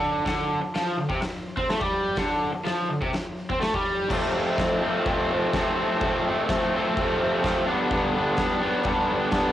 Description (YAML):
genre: garage rock duo or trio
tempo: 126 BPM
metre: 4/4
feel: straight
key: unclear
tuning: A4 = 440 Hz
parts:
  - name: raw garage guitar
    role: riff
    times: 0.0-9.5 s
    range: F2 to D4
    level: -23 LUFS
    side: equal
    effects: overdrive, cassette tape
  - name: oversized low-tuned drum kit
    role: drums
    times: 0.3-9.4 s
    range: crash cymbal, hi-hat, kick drum, snare drum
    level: -30 LUFS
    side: equal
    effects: cassette tape
room: small room ambience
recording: home recording on cassette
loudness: -22 LUFS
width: side -12 dB against mid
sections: 0.0-4.1 A section; 4.1-9.5 B section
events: none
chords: 0.0 Dm; 4.1 F; 7.7 G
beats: | 0.26 0.74 1.23 1.71 | 2.19 2.67 3.15 3.62 | 4.10 4.58 5.06 5.53 | 6.01 6.49 6.96 7.44 | 7.91 8.38 8.86 9.33